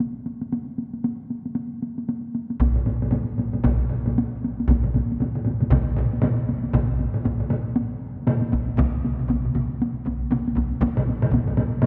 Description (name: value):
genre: japanese traditional, taiko drum ensemble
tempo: 117 BPM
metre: 4/4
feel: swing 60% on 16ths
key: none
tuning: none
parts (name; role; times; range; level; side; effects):
- solo taiko drums; percussion; 0.0-11.9 s; none; -29 LUFS; equal; none
- solo taiko drums; percussion; 2.6-11.9 s; none; -27 LUFS; equal; none
- taiko ensemble; percussion; 2.6-11.5 s; none; -29 LUFS; equal; none
- taiko ensemble; percussion; 4.7-10.4 s; none; -31 LUFS; equal; none
room: wet cathedral reverb, RT60 4.5 s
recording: recorded in a church or concert hall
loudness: -24 LUFS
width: mono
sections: 0.0-6.7 A section; 6.7-11.9 B section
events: speeding up 0.0-11.9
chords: none